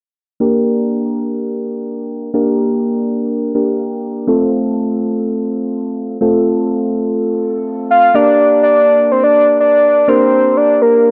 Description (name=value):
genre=dance-pop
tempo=124 BPM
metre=4/4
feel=straight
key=G minor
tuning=A4 = 440 Hz
part: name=soft electric-piano-like synth keys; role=accompaniment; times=0.4-11.1 s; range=A3 to Bb4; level=-18 LUFS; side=equal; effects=chorus, phaser
part: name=soft octave-layered synth lead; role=melody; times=7.9-11.1 s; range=Bb4 to F5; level=-11 LUFS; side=equal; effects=chorus
room=light reverb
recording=dry, gritty hardware recording, low-pass filter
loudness=-14 LUFS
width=mono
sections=0.4-8.1 A section; 8.1-11.1 B section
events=filter sweep 0.4-8.1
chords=0.4 Gm; 4.3 F; 8.1 Gm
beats=| 0.41 0.89 1.38 1.86 | 2.34 2.83 3.31 3.79 | 4.28 4.76 5.25 5.73 | 6.21 6.70 7.18 7.67 | 8.15 8.63 9.12 9.60 | 10.08 10.57 11.05